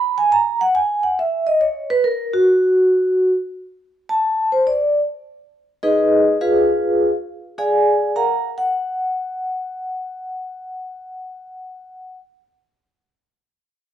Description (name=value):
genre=jazz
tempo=138 BPM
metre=4/4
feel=swing 68% on 8ths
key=unclear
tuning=A4 = 440 Hz
part: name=vibraphone with soft mallets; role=solo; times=0.0-12.2 s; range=Eb4 to Cb6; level=-17 LUFS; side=equal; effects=none
room=light reverb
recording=none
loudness=-16 LUFS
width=side -10 dB against mid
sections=0.0-5.1 A section; 5.1-8.6 B section; 8.6-12.0 C section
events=none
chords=0.0 N.C.; 5.1 Fm7b5; 6.8 Bb7b9b13; 8.6 N.C.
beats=0.29 0.72 1.16 | 1.59 2.02 2.46 2.90 | 3.33 3.76 4.20 4.63 | 5.07 5.50 5.94 6.37 | 6.81 7.24 7.68 8.12 | 8.55 8.99 9.42 9.86 | 10.29 10.73 11.16 11.60